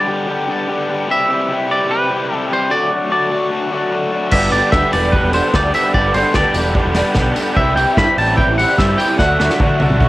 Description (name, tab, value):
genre	indie rock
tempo	148 BPM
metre	4/4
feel	straight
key	G major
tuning	A4 = 439 Hz
part	twangy electric guitar	melody	0.0-10.1 s	B4 to B5	-18 LUFS	equal	phaser, cassette tape, tape echo
part	chorused pulse-width pad	sustained chords	0.0-10.1 s	C4 to D6	-30 LUFS	right 1 dB	none
part	raw garage guitar	riff	0.0-10.1 s	G2 to G4	-19 LUFS	left 2 dB	overdrive
part	delicate synth tine bell	second line	4.3-10.1 s	G4 to G5	-29 LUFS	right 1 dB	none
part	raw garage guitar	riff	4.3-10.1 s	G2 to G4	-20 LUFS	right 3 dB	overdrive, ensemble chorus
part	growling picked electric bass	bass	4.3-10.0 s	E1 to G2	-20 LUFS	equal	overdrive
part	unplugged drum kit	drums	4.3-10.1 s	crash cymbal, hi-hat, kick drum, snare drum, toms	-19 LUFS	equal	none
room	studio ambience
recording	home recording on cassette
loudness	-13 LUFS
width	side -17 dB against mid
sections	0.0-10.1 A section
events	drum fill 9.2-10.1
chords	0.0 G; 1.1 C; 2.7 D; 4.3 G; 7.6 C; 9.2 D